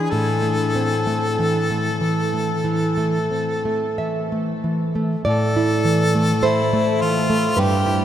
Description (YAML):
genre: romantic duo for harmonica and classical guitar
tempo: 42-53 BPM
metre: 4/4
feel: rubato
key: A minor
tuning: A4 = 437 Hz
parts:
  - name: clear harmonica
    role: melody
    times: 0.0-8.0 s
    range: E4 to A4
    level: -22 LUFS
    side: left 2 dB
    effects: none
  - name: nylon-string guitar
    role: accompaniment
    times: 0.0-8.0 s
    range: G2 to E5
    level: -19 LUFS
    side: right 1 dB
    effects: none
room: wet huge ambient reverb, RT60 7.6 s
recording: in a vast, echoing space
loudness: -18 LUFS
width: side -10 dB against mid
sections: 0.0-5.3 A section; 5.3-8.0 B section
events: none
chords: 0.1 Am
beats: | 0.10 1.39 2.65 4.00 | 5.28 6.45 7.58